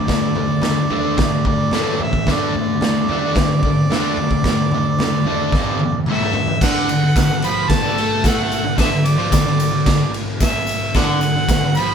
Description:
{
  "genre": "garage rock duo or trio",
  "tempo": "110 BPM",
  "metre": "4/4",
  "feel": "straight",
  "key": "D major",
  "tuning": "A4 = 440 Hz",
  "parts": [
    { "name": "clear harmonica", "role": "melody", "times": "0.0-11.9 s", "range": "D5 to B5", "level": "-23 LUFS", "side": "right 4 dB", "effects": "overdrive" },
    { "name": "fuzz guitar", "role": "riff", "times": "0.0-11.9 s", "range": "F2 to D4", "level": "-19 LUFS", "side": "left 1 dB", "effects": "distortion" },
    { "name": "raw garage drum kit", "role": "drums", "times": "0.1-11.9 s", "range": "crash cymbal, kick drum, ride cymbal, snare drum, toms", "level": "-19 LUFS", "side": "equal", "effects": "none" },
    { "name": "tambourine", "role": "percussion", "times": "6.6-11.9 s", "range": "none", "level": "-36 LUFS", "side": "left 8 dB", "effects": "none" }
  ],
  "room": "moderate stone room reverb, RT60 1.2 s",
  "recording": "band playing live in one room",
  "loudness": "-15 LUFS",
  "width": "side -7 dB against mid",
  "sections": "0.0-6.6 A section; 6.6-11.9 B section",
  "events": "drum fill 5.5-6.6",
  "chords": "0.0 D5; 1.7 A5; 2.3 D5; 5.5 F5; 6.1 A5; 6.6 D",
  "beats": "| 0.09 0.64 1.18 1.73 | 2.27 2.82 3.36 3.91 | 4.45 4.99 5.54 6.08 | 6.62 7.16 7.71 8.25 | 8.79 9.33 9.87 10.40 | 10.94 11.48"
}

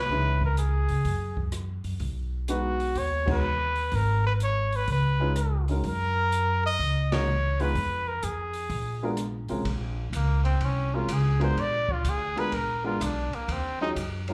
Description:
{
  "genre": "jazz, small-group swing and bop",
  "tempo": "126 BPM",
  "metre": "4/4",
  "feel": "swing 67% on 8ths",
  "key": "unclear",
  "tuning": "A4 = 440 Hz",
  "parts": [
    { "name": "breathy trumpet", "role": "melody", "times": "0.0-13.9 s", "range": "Bb3 to Eb5", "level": "-31 LUFS", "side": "equal", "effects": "plate reverb, slapback echo" },
    { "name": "dark baby grand piano", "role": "accompaniment", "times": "0.1-14.3 s", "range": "Gb3 to Db5", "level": "-34 LUFS", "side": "equal", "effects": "plate reverb, slapback echo" },
    { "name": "upright bass", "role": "bass", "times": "0.1-14.3 s", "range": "Ab1 to Db3", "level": "-30 LUFS", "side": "equal", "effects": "none" },
    { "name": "open jazz drum kit", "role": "drums", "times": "0.4-14.3 s", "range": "crash cymbal, hi-hat, kick drum, ride cymbal, rim click, snare drum", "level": "-38 LUFS", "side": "equal", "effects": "none" }
  ],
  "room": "light reverb",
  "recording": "live gig heard through the venue's PA, club reverb",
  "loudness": "-27 LUFS",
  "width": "mono",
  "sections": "0.0-9.7 A section; 9.7-14.3 B section",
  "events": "band accent 3.2, 7.0; trumpet solo 9.7-14.3",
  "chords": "0.1 Dbm9; 1.1 Gbsus2; 2.0 B6; 3.9 Absus2; 4.9 Db7sus2; 7.8 Fdim; 8.7 Bb7b9; 13.5 Ebm11",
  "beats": "| 0.10 0.58 1.06 1.54 | 2.01 2.49 2.97 3.45 | 3.93 4.41 4.88 5.36 | 5.84 6.32 6.79 7.27 | 7.75 8.23 8.71 9.18 | 9.66 10.14 10.62 11.10 | 11.57 12.05 12.53 13.01 | 13.49 13.96"
}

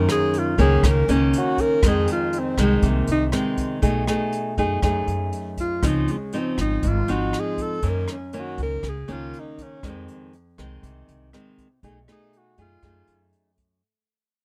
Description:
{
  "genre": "bossa nova",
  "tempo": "120 BPM",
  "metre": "4/4",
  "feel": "straight",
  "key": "unclear",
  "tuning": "A4 = 435 Hz",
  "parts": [
    { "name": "breathy alto saxophone", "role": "melody", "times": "0.0-13.3 s", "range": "Ab3 to Bb4", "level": "-27 LUFS", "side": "equal", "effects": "none" },
    { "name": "nylon-string guitar", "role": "accompaniment", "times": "0.0-13.8 s", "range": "F2 to Ab4", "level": "-27 LUFS", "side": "equal", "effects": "none" },
    { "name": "upright bass", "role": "bass", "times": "0.0-13.3 s", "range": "Ab1 to Gb2", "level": "-26 LUFS", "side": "equal", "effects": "none" },
    { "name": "jazz brush drum kit", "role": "drums", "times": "0.1-13.7 s", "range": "hi-hat, kick drum, rim click", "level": "-28 LUFS", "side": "equal", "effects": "none" }
  ],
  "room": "little or no reverb",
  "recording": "close, detailed microphones",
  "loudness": "-22 LUFS",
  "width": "mono",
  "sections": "0.0-13.8 A section",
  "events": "fade-out 0.0-13.8; alto saxophone solo 0.0-13.8",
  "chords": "0.0 Gb6; 1.8 Fm7; 3.8 Cb6; 5.8 Dbmaj9; 7.8 Gb6; 9.8 Fm7; 11.8 Cb6",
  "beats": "0.33 0.83 1.33 | 1.83 2.33 2.83 3.33 | 3.83 4.33 4.83 5.33 | 5.83 6.33 6.83 7.33 | 7.83 8.33 8.83 9.33 | 9.83 10.33 10.83 11.33 | 11.83 12.33 12.83 13.33"
}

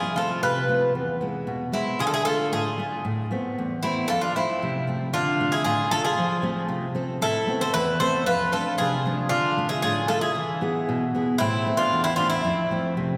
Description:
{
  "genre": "greek folk, Greek bouzouki band",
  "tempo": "115 BPM",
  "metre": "2/4",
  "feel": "straight",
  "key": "unclear",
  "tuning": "A4 = 440 Hz",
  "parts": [
    { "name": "Greek bouzouki", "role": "melody", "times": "0.0-12.9 s", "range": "E4 to C5", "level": "-27 LUFS", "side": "equal", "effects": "none" },
    { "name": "Greek bouzouki", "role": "second line", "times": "0.0-12.9 s", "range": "C4 to A4", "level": "-32 LUFS", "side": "equal", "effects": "none" },
    { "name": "picked steel-string acoustic guitar", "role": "accompaniment", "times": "0.0-13.2 s", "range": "E2 to A4", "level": "-29 LUFS", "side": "equal", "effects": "none" }
  ],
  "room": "wet church reverb, RT60 2.8 s",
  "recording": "recorded in a church or concert hall",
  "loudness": "-24 LUFS",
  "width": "mono",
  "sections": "0.0-5.1 A section; 5.1-13.2 B section",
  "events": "none",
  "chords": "0.0 F; 1.0 E; 2.0 Dm; 3.0 Amadd9; 4.1 F; 5.1 Dm; 6.2 F; 7.2 Amadd9; 8.3 F6; 9.3 Dm; 10.4 E; 11.4 Am; 12.4 F",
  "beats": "0.43 | 0.96 1.48 | 2.00 2.52 | 3.05 3.57 | 4.09 4.61 | 5.14 5.66 | 6.18 6.70 | 7.22 7.74 | 8.27 8.79 | 9.31 9.83 | 10.35 10.88 | 11.40 11.92 | 12.45 12.97"
}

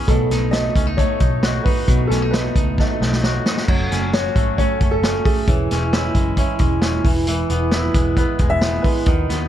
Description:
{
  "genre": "jangly indie pop",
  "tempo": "133 BPM",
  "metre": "4/4",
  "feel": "straight",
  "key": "E major",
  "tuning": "A4 = 440 Hz",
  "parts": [
    { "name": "fingerpicked twelve-string acoustic guitar", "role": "accompaniment", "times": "0.0-9.5 s", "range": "B2 to F#4", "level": "-25 LUFS", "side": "right 7 dB", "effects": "none" },
    { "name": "twangy electric guitar", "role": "arpeggios", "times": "0.0-9.5 s", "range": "B2 to G#4", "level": "-24 LUFS", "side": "left 4 dB", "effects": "none" },
    { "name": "clear upright piano", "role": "melody", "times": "0.1-9.5 s", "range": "G#4 to E5", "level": "-24 LUFS", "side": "equal", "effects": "none" },
    { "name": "vintage muted picked electric bass", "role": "bass", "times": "0.1-9.5 s", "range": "E1 to D#2", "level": "-22 LUFS", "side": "equal", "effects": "none" },
    { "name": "vintage drum kit", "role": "drums", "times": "0.1-9.4 s", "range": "crash cymbal, hi-hat, kick drum, snare drum", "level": "-19 LUFS", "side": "equal", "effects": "none" }
  ],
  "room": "little or no reverb",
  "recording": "dark, warm production",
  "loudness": "-16 LUFS",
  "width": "side -11 dB against mid",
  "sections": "0.0-3.7 A section; 3.7-9.5 B section",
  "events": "drum fill 2.8-3.7",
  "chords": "0.1 B7; 3.7 F#m; 5.5 C#m/E; 7.0 E",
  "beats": "| 0.08 0.53 0.98 1.43 | 1.88 2.33 2.78 3.23 | 3.68 4.13 4.58 5.03 | 5.48 5.93 6.38 6.83 | 7.28 7.72 8.17 8.62 | 9.07"
}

